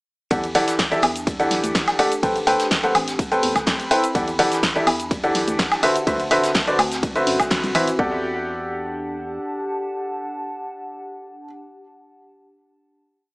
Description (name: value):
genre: piano house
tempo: 125 BPM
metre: 4/4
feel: straight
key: E minor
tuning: A4 = 440 Hz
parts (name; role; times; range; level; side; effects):
- clear baby grand piano; riff; 0.3-11.4 s; D3 to G5; -20 LUFS; equal; sidechain pumping, tape echo
- organ-like FM bass; bass; 0.3-9.4 s; G1 to F#2; -32 LUFS; equal; tube saturation, sidechain pumping
- electronic kick drum; drums; 0.3-8.1 s; none; -25 LUFS; equal; studio reverb
- house drum kit; drums; 0.3-8.0 s; hi-hat, ride cymbal, shaker, snare drum, woodblock; -23 LUFS; equal; studio reverb
- soft brush drum kit; drums; 0.3-7.9 s; hi-hat, snare drum; -32 LUFS; equal; none
- warbly tape-like pad; texture; 1.1-11.7 s; C4 to B5; -29 LUFS; equal; chorus, built-in reverb, phaser, sidechain pumping
room: light reverb, studio reverb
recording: small speaker sound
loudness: -18 LUFS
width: side -29 dB against mid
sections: 0.3-8.0 drop; 8.0-11.8 final chord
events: drop 0.3-8.0; band accent 7.5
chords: 0.3 Em11; 2.2 Am9; 4.2 Em11; 5.8 D13; 8.0 Em11